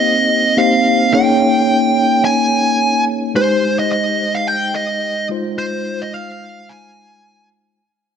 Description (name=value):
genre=pop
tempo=108 BPM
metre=4/4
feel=swing 55% on 16ths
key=Ab major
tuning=A4 = 440 Hz
part: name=fuzz lead guitar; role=melody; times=0.0-7.5 s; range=C5 to Ab5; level=-16 LUFS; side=right 1 dB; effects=distortion, tape echo
part: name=mellow tine electric piano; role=accompaniment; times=0.0-7.8 s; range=Ab3 to Db5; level=-17 LUFS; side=left 1 dB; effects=medium stereo tremolo
room=moderate concert hall reverb, RT60 2.5 s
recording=none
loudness=-13 LUFS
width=side -7 dB against mid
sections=0.0-3.4 A section; 3.4-7.8 B section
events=fade-out 3.4-7.8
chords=0.0 Cm7; 1.1 Eb7sus4; 3.4 Abmaj7; 5.3 Fm7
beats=0.02 0.58 | 1.14 1.69 2.25 2.80 | 3.36 3.91 4.47 5.02 | 5.58 6.13 6.69 7.25